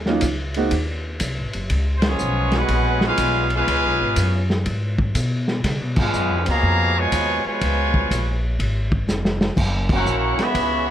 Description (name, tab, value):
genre	jazz, big band swing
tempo	122 BPM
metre	4/4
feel	swing 66% on 8ths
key	unclear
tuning	A4 = 440 Hz
part	upright bass	bass	0.0-10.9 s	F1 to Db3	-22 LUFS	equal	none
part	clear upright piano	accompaniment	0.1-0.7 s	Gb3 to Gb4	-21 LUFS	right 3 dB	none
part	vintage drum kit	drums	0.1-10.7 s	crash cymbal, hi-hat, kick drum, ride cymbal, snare drum	-24 LUFS	equal	none
part	brilliant trumpet section	melody	2.0-10.9 s	Cb4 to Cb6	-21 LUFS	equal	none
part	clear trombone section	second line	2.0-10.9 s	Cb3 to Gb4	-24 LUFS	right 1 dB	none
room	light reverb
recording	none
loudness	-18 LUFS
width	side -11 dB against mid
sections	0.0-1.7 A section; 1.7-10.9 B section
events	band accent 2.0, 5.9, 9.8; drum fill 9.1-9.6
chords	0.0 Ebm7; 0.7 Ab7; 1.7 Db7; 9.6 Gb7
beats	0.24 0.73 1.22 | 1.72 2.21 2.70 3.19 | 3.68 4.17 4.67 5.16 | 5.65 6.14 6.63 7.12 | 7.61 8.10 8.60 9.09 | 9.58 10.07 10.56